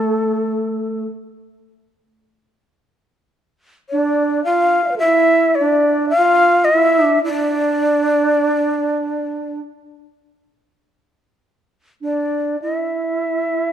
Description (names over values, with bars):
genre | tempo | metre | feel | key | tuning
japanese traditional, Japanese chamber music | 53 BPM | 4/4 | rubato | D minor | A4 = 440 Hz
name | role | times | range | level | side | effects
mellow shakuhachi | melody | 0.0-13.7 s | A4 to F5 | -17 LUFS | left 2 dB | none
alto flute | second line | 0.0-13.7 s | A3 to E5 | -19 LUFS | right 5 dB | none
room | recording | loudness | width
moderate scoring stage reverb, RT60 1.7 s | dark, warm production | -15 LUFS | side -9 dB against mid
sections
0.0-12.6 A section; 12.6-13.7 B section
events
none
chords
none